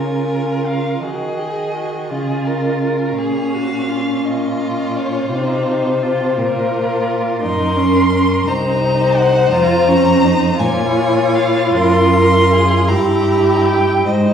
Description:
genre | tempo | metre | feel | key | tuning
classical, slow romantic movement for string quartet | 48-58 BPM (dotted quarters) | 6/8 | rubato | unclear | A4 = 440 Hz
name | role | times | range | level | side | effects
rich violin | melody | 0.0-14.3 s | C5 to C6 | -21 LUFS | left 2 dB | none
rich violin | second line | 0.0-14.3 s | F4 to Db5 | -19 LUFS | left 1 dB | none
dark viola | accompaniment | 0.0-14.3 s | Db4 to Ab4 | -19 LUFS | right 1 dB | none
rich cello | bass | 0.0-14.3 s | C2 to Eb3 | -19 LUFS | right 1 dB | none
room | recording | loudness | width
wet recital hall reverb, RT60 1.5 s | heard from further back in the room, studio ambience | -13 LUFS | side -8 dB against mid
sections
0.0-14.3 A section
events
none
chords
0.0 Db; 1.0 Ab5/Eb; 2.1 Db; 3.2 Bbm; 5.3 F5/C; 6.4 Bb5; 7.4 Gb; 8.5 Cm7b5; 9.5 F5; 10.6 Bbm7; 11.7 Gbmaj9#11; 12.9 Gm6

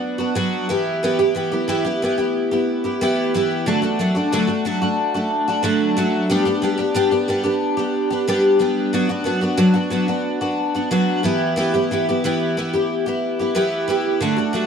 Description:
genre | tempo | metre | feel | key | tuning
rock | 91 BPM | 4/4 | straight | unclear | A4 = 440 Hz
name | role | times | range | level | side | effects
picked twelve-string acoustic guitar | solo | 0.0-14.7 s | D3 to G4 | -17 LUFS | equal | wide subtle chorus, tape echo
room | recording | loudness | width
light reverb | dry, close 1970s-style studio recording | -17 LUFS | side -7 dB against mid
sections
0.0-3.7 A section; 3.7-14.7 A section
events
none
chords
0.0 Bm; 0.7 Em; 3.7 D; 6.3 G; 8.9 Bm/F#; 11.2 Em

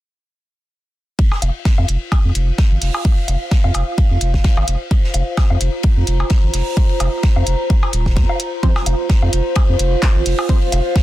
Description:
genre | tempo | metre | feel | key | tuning
minimal techno | 129 BPM | 4/4 | swing 55% on 16ths | unclear | A4 = 440 Hz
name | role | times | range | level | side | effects
electronic kick drum | drums | 1.2-11.0 s | none | -14 LUFS | equal | overdrive
open jazz drum kit | drums | 1.2-11.0 s | hi-hat, ride cymbal, snare drum | -31 LUFS | left 3 dB | high-pass filter on cymbals, high-pass filter on hats, high-pass filter on snare, high-pass filter on room
warbly tape-like pad | texture | 1.9-11.0 s | F4 to Bb5 | -24 LUFS | right 1 dB | chorus, built-in reverb, sidechain pumping
cowbell and woodblock | percussion | 1.3-10.8 s | none | -26 LUFS | left 2 dB | overdrive, tape echo
saturated sub bass | bass | 1.4-10.8 s | Eb1 to F2 | -17 LUFS | equal | sidechain pumping
minimal click drum kit | drums | 1.4-10.8 s | handclaps, hi-hat | -23 LUFS | equal | none
wavetable chord stab | stabs | 8.6-10.6 s | F3 to C5 | -27 LUFS | right 4 dB | tape echo
room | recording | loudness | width
little or no reverb | dense, heavily limited modern master | -14 LUFS | side -15 dB against mid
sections
1.2-11.0 A section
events
none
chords
1.2 F5

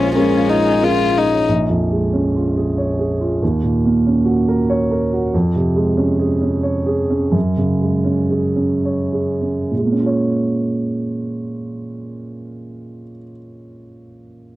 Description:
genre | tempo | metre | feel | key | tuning
neoclassical piano and strings | 69-95 BPM | 3/4 | rubato | Bb minor | A4 = 440 Hz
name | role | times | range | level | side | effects
dark violin | melody | 0.0-1.5 s | Db4 to F4 | -17 LUFS | left 5 dB | none
dark cello | second line | 0.0-1.1 s | F4 | -28 LUFS | right 3 dB | none
dark baby grand piano | accompaniment | 0.0-14.6 s | Bb1 to Db5 | -17 LUFS | right 1 dB | none
dark viola | accompaniment | 0.0-1.3 s | Ab3 | -25 LUFS | right 2 dB | none
marimba with medium mallets | arpeggios | 0.0-1.4 s | Bb4 to Ab5 | -27 LUFS | left 5 dB | none
room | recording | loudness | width
little or no reverb | dry, close 1970s-style studio recording | -15 LUFS | side -16 dB against mid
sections
0.0-1.5 A section; 1.5-9.7 B section; 9.7-14.6 C section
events
slowing down 4.4-9.7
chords
0.0 Bbm7; 3.4 Ebm7; 5.3 Dbmaj7/F; 7.3 Gbsus2; 9.7 Bbm7

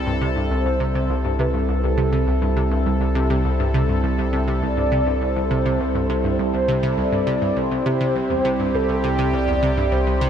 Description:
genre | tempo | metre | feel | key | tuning
ambient, sequencer-driven space music | 102 BPM | 4/4 | straight | C major | A4 = 440 Hz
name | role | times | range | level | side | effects
mellow horn-like synth lead | melody | 0.0-10.3 s | G4 to D5 | -25 LUFS | right 1 dB | ensemble chorus, ping-pong delay
sweeping resonant pad | sustained chords | 0.0-10.3 s | G3 to A4 | -23 LUFS | equal | chorus
round analog bass | bass | 0.0-10.3 s | C2 | -24 LUFS | equal | none
analog pluck | riff | 0.1-10.3 s | C2 to C3 | -24 LUFS | right 1 dB | chorus, ping-pong delay
room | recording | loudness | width
moderate lush hall reverb, RT60 2.9 s | dreamy mix soaked in reverb | -18 LUFS | side -8 dB against mid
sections
0.0-10.3 A section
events
none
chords
0.0 C6

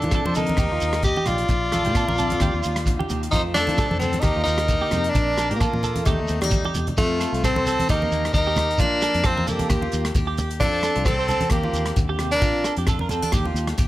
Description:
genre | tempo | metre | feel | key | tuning
highlife guitar band | 132 BPM | 4/4 | swing 55% on 16ths | unclear | A4 = 438 Hz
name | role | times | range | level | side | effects
breathy tenor saxophone | melody | 0.0-12.7 s | G3 to G4 | -24 LUFS | equal | tape echo
bright trumpet | second line | 0.0-12.8 s | Eb4 to Eb5 | -31 LUFS | left 4 dB | none
picked steel-string acoustic guitar | accompaniment | 0.0-13.9 s | F2 to A4 | -32 LUFS | left 5 dB | none
clean electric guitar | arpeggios | 0.0-13.7 s | Bb3 to C5 | -29 LUFS | right 6 dB | analog chorus, tape echo
fingered electric bass | bass | 0.0-13.9 s | Bb1 to F3 | -27 LUFS | equal | none
warm soul drum kit | drums | 0.0-13.9 s | hi-hat, kick drum, rim click | -26 LUFS | equal | none
congas | percussion | 0.0-13.5 s | none | -29 LUFS | right 1 dB | none
shekere | percussion | 0.1-13.9 s | none | -28 LUFS | right 1 dB | none
room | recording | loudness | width
light reverb, small room ambience | none | -19 LUFS | side -15 dB against mid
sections
0.0-7.0 A section; 7.0-13.9 B section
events
drum fill 6.4-7.0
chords
0.0 F; 0.6 Eb; 1.5 Bb; 2.4 Eb; 3.3 F; 4.2 Eb; 5.2 Bb; 6.1 Eb; 7.0 F; 7.9 Eb; 8.8 Bb; 9.7 Eb; 10.6 F; 11.5 Eb; 12.4 Bb; 13.3 Eb

